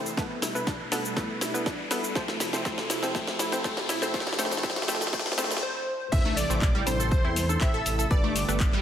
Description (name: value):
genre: progressive house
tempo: 121 BPM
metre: 4/4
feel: straight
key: A minor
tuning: A4 = 440 Hz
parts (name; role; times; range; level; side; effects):
- warm analog pad; sustained chords; 0.0-8.8 s; B2 to A4; -38 LUFS; right 1 dB; chorus, sidechain pumping
- wide unison pluck; stabs; 0.0-8.6 s; B3 to C5; -33 LUFS; left 1 dB; sidechain pumping, digital delay
- riser and impact; sound effects; 0.0-8.1 s; none; -36 LUFS; left 2 dB; none
- house drum kit; drums; 0.1-8.8 s; crash cymbal, handclaps, hi-hat, shaker, snare drum; -30 LUFS; left 1 dB; sidechain pumping on hats, sidechain pumping on perc, sidechain pumping on cymbals
- wide unison pluck; arpeggios; 0.2-8.8 s; G3 to A4; -34 LUFS; right 1 dB; phaser, sidechain pumping, digital delay
- electronic kick drum; drums; 0.2-8.7 s; none; -27 LUFS; equal; none
- plucky unison lead; melody; 5.6-8.6 s; C5 to E5; -32 LUFS; equal; digital delay
- soft supersaw; second line; 6.1-8.6 s; C6 to E6; -36 LUFS; equal; cassette tape, sidechain pumping, digital delay
- dark detuned saw bass; bass; 6.1-8.8 s; G1 to E2; -30 LUFS; equal; sidechain pumping
- congas; percussion; 6.3-8.5 s; none; -39 LUFS; left 3 dB; overdrive, sidechain pumping on perc
room: moderate scoring stage reverb, RT60 1.6 s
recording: dense, heavily limited modern master, high-pass filter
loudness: -24 LUFS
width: side -10 dB against mid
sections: 0.0-6.1 A section; 6.1-8.8 B section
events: build-up 0.0-6.1; drum fill 0.0-5.6; riser 0.0-5.6; filter sweep on synth pluck 0.0-6.1; filter sweep on analog synth pad 0.0-6.1; stop 5.6-6.1; drop 6.1-8.8; impact 6.1-8.1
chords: 0.2 Gadd9; 2.2 F; 4.1 Dm7; 6.1 Am; 8.1 Gadd9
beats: | 0.17 0.67 1.17 1.66 | 2.16 2.65 3.15 3.65 | 4.14 4.64 5.13 5.63 | 6.12 6.62 7.12 7.61 | 8.11 8.60